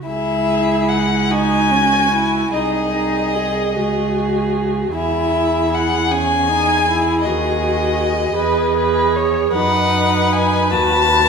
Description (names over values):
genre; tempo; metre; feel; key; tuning
classical, slow romantic movement for string quartet; 48-55 BPM (dotted quarters); 6/8; rubato; C# minor; A4 = 440 Hz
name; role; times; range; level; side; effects
dark viola; accompaniment; 0.0-11.3 s; C#4 to G#4; -20 LUFS; right 2 dB; none
dark violin; melody; 0.1-11.3 s; D#5 to A5; -19 LUFS; left 3 dB; none
dark violin; second line; 0.1-11.3 s; F#4 to C#5; -21 LUFS; equal; none
warm cello; bass; 0.1-11.3 s; B#1 to F#2; -22 LUFS; right 3 dB; none
room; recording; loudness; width
wet stone room reverb, RT60 1.4 s; minimal, uncompressed stereo recording; -14 LUFS; side -6 dB against mid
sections
0.1-11.3 A section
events
none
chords
0.1 C#m; 2.5 G#/B#; 3.7 C#5; 4.9 E; 7.2 D#madd11; 8.4 E; 9.5 B7/F#